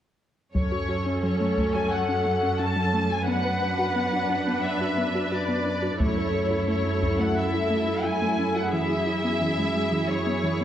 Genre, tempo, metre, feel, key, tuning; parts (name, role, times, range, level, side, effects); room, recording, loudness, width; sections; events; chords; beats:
cinematic, hybrid orchestral and electronic film score; 88 BPM; 4/4; straight; F# minor; A4 = 440 Hz
rich symphonic violin section; melody; 0.5-10.6 s; C#5 to A5; -28 LUFS; left 3 dB
soft round pluck; arpeggios; 0.5-10.6 s; E3 to B4; -29 LUFS; left 1 dB; chorus, digital delay
rich symphonic cello section; bass; 0.5-10.6 s; F#2; -29 LUFS; right 2 dB
clear symphonic viola section; accompaniment; 0.6-10.6 s; C#4 to B4; -28 LUFS; right 2 dB
taiko ensemble; drums; 0.6-1.9, 6.0-7.3 s; -30 LUFS; equal
wet scoring stage reverb, RT60 1.9 s; worn, warbling old tape, cassette tape, warbly pitch drift; -22 LUFS; side -10 dB against mid
0.5-10.6 A section
0.5 F#m; 3.3 Bm/F#; 6.0 A/F#; 8.7 E/F#
| 0.55 1.23 1.91 2.59 | 3.27 3.96 4.64 5.32 | 6.00 6.68 7.37 8.05 | 8.73 9.41 10.09